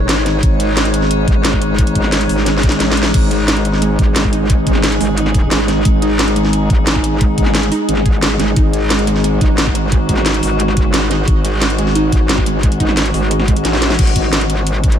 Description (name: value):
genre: dark technical drum and bass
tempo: 177 BPM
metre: 4/4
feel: straight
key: unclear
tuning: A4 = 440 Hz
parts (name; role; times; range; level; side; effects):
- metallic inharmonic drone; sustained chords; 0.0-15.0 s; G#3 to C#5; -18 LUFS; left 1 dB; chorus, built-in reverb, sidechain pumping
- metallic wobble bass; bass; 0.0-15.0 s; G#1 to A1; -17 LUFS; equal; chorus, tube saturation
- drum and bass drum kit; drums; 0.1-15.0 s; crash cymbal, hi-hat, snare drum; -18 LUFS; equal; none
- electronic kick drum; drums; 0.4-14.9 s; none; -14 LUFS; equal; overdrive
- wide unison pluck; arpeggios; 3.3-13.8 s; G#3 to G#4; -21 LUFS; right 4 dB; sidechain pumping, diffuse ambient delay
room: light reverb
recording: none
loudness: -12 LUFS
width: side -9 dB against mid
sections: 0.0-14.0 A section; 14.0-15.0 A section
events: drop 0.0-14.0, 14.0-15.0; drum fill 2.5-3.1, 13.6-14.0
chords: 0.0 G#5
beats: 0.09 | 0.43 0.77 1.11 1.45 | 1.78 2.12 2.46 2.80 | 3.14 3.48 3.82 4.16 | 4.50 4.84 5.17 5.51 | 5.85 6.19 6.53 6.87 | 7.21 7.55 7.89 8.23 | 8.56 8.90 9.24 9.58 | 9.92 10.26 10.60 10.94 | 11.28 11.62 11.96 12.29 | 12.63 12.97 13.31 13.65 | 13.99 14.33 14.67